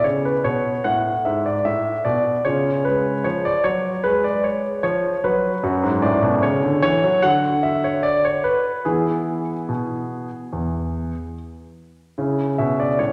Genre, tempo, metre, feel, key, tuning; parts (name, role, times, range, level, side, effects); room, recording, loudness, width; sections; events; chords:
classical-period piano sonatina; 74 BPM; 4/4; straight; A major; A4 = 440 Hz
clear concert grand piano; solo; 0.0-13.1 s; E2 to F#5; -21 LUFS; equal
wet recital hall reverb, RT60 1.7 s; -21 LUFS; mono
0.0-13.1 A section
0.0 A; 2.5 C#; 5.6 F#m; 7.2 Dmaj13; 8.9 E; 12.2 A